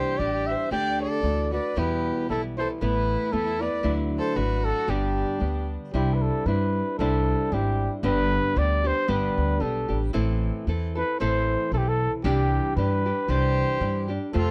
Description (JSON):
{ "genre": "mexican folk, mariachi", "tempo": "115 BPM", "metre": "2/4", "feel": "swing 54% on 8ths", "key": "G major, C major from 5.9 s", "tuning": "A4 = 438 Hz", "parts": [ { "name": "dark trumpet", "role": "melody", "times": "0.0-14.5 s", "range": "G4 to G5", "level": "-29 LUFS", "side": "equal", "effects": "none" }, { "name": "rich violin", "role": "second line", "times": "0.0-5.7, 13.3-14.5 s", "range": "D4 to D5", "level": "-36 LUFS", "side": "equal", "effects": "none" }, { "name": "nylon-string guitar", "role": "accompaniment", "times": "0.0-14.5 s", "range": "E2 to A4", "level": "-31 LUFS", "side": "equal", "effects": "none" }, { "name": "upright bass", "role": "bass", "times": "0.2-14.5 s", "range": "G1 to G2", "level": "-29 LUFS", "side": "equal", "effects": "none" } ], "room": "light reverb", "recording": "dry, close 1970s-style studio recording", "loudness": "-25 LUFS", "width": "mono", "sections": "0.0-5.9 A section; 5.9-14.5 B section", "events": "none", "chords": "0.0 Cadd9; 0.7 Dsus4; 1.2 Dadd9; 1.8 Em; 2.8 Asus2; 3.8 Dadd9; 4.9 G; 5.9 Cadd9; 8.0 G; 10.1 Am; 12.2 Cadd9" }